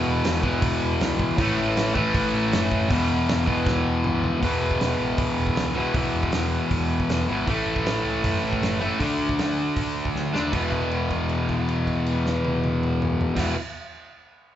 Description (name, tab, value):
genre	punk rock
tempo	157 BPM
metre	4/4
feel	straight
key	unclear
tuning	A4 = 440 Hz
part	distorted electric guitar	riff	0.0-13.6 s	E2 to D4	-23 LUFS	left 1 dB	distortion
part	overdriven picked electric bass	bass	0.0-13.5 s	E1 to F#2	-30 LUFS	equal	none
part	loose indie drum kit	drums	0.2-13.5 s	crash cymbal, hi-hat, kick drum, snare drum, toms	-29 LUFS	right 1 dB	none
room	light reverb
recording	band playing live in one room, nothing above 7.8 kHz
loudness	-21 LUFS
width	side -11 dB against mid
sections	0.0-4.4 A section; 4.4-10.5 B section; 10.5-13.6 C section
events	drum fill 3.7-4.4, 10.1-10.5; held note 10.5-13.4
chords	0.0 E5; 1.4 A5; 2.9 E5; 7.5 A5; 9.0 D5; 10.5 E5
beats	0.25 0.63 1.01 | 1.39 1.77 2.15 2.52 | 2.90 3.28 3.66 4.04 | 4.42 4.80 5.19 5.57 | 5.95 6.33 6.71 7.09 | 7.47 7.86 8.24 8.62 | 9.00 9.38 9.77 10.15 | 10.53 10.91 11.29 11.68 | 12.06 12.44 12.83 13.21